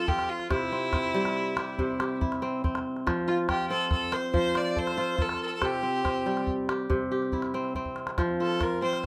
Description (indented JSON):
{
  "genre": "west african traditional, West African string and xylophone music",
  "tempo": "94 BPM (dotted quarters)",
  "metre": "12/8",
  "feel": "straight",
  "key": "F major",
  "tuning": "A4 = 439 Hz",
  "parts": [
    { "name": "clear fiddle", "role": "melody", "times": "0.0-9.0 s", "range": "E4 to D5", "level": "-33 LUFS", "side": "equal", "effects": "none" },
    { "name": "kora", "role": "arpeggios", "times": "0.0-9.1 s", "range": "C3 to C5", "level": "-31 LUFS", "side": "equal", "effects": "none" },
    { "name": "calabash", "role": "percussion", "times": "0.1-9.0 s", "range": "none", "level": "-34 LUFS", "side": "equal", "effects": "none" }
  ],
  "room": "little or no reverb",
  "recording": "close, detailed microphones",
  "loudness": "-28 LUFS",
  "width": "mono",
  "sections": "0.0-9.1 A section",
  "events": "drum fill 7.8-8.2",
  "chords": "0.0 F; 0.5 C; 3.1 F; 5.6 C; 8.2 F"
}